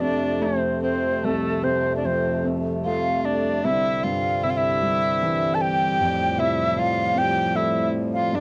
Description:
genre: celtic folk, Celtic slow air.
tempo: 76 BPM.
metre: 3/4.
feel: rubato.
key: unclear.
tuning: A4 = 439 Hz.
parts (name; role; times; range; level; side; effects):
bright reedy wooden flute; melody; 0.0-8.4 s; A4 to A5; -26 LUFS; equal; cassette tape.
warm fiddle; second line; 0.0-8.4 s; A3 to A4; -31 LUFS; equal; cassette tape.
warm upright piano; accompaniment; 0.0-8.4 s; C2 to C4; -30 LUFS; equal; cassette tape.
pedal harmonium; sustained chords; 0.0-8.4 s; F2 to C4; -30 LUFS; equal; cassette tape.
room: light reverb.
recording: home recording on cassette.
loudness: -23 LUFS.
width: mono.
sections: 0.0-8.4 A section.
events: none.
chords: 0.0 F; 3.7 Cadd9; 6.0 Fadd9.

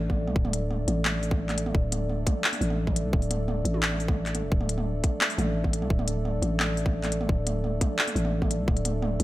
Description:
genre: half-time drum and bass.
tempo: 173 BPM.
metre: 4/4.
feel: half-time.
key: unclear.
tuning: A4 = 440 Hz.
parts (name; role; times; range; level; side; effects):
dark analog pad; sustained chords; 0.0-9.2 s; A3 to D5; -33 LUFS; right 1 dB; chorus, sidechain pumping.
growling 808-style bass; bass; 0.0-9.2 s; D1 to C2; -28 LUFS; equal; tube saturation.
electronic kick drum; drums; 0.1-8.7 s; none; -25 LUFS; equal; none.
organic electronic drum kit; drums; 0.1-9.2 s; handclaps, hi-hat, toms; -30 LUFS; equal; none.
room: little or no reverb.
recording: none.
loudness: -24 LUFS.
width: side -16 dB against mid.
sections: 0.0-9.2 A section.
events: none.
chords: 0.0 D5.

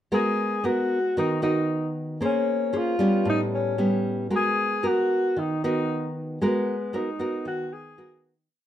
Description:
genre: bossa nova.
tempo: 114 BPM.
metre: 4/4.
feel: straight.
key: G# minor.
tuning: A4 = 440 Hz.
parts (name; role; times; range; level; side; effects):
mellow alto saxophone; melody; 0.1-8.2 s; B3 to G#4; -26 LUFS; left 1 dB; none.
nylon-string guitar; accompaniment; 0.1-8.5 s; A2 to B#4; -25 LUFS; right 1 dB; none.
room: moderate studio reverb, RT60 0.8 s.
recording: dark, warm production.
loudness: -22 LUFS.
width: side -11 dB against mid.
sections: 0.1-8.5 A section.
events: fade-out 6.4-8.5.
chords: 0.1 G#m9; 2.2 A#m9; 3.3 A9; 4.3 G#m9.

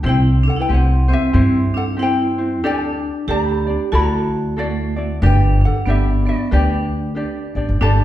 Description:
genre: Hawaiian.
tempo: 93 BPM.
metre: 4/4.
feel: swing 61% on 8ths.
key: G major.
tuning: A4 = 440 Hz.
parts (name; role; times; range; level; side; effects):
ukulele; accompaniment; 0.0-8.0 s; C4 to D5; -22 LUFS; equal; none.
upright bass; bass; 0.0-8.0 s; G1 to G2; -17 LUFS; equal; none.
ukulele; melody; 0.1-8.0 s; F#4 to B5; -24 LUFS; left 4 dB; none.
vibraphone with hard mallets; second line; 0.1-8.0 s; A3 to G4; -24 LUFS; right 4 dB; none.
room: wet recital hall reverb, RT60 1.2 s.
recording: heard from further back in the room, nothing above 10.3 kHz.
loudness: -15 LUFS.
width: side -13 dB against mid.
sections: 0.0-7.8 A section.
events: none.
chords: 0.0 C; 2.6 Dsus4; 3.9 Dadd9; 5.2 G.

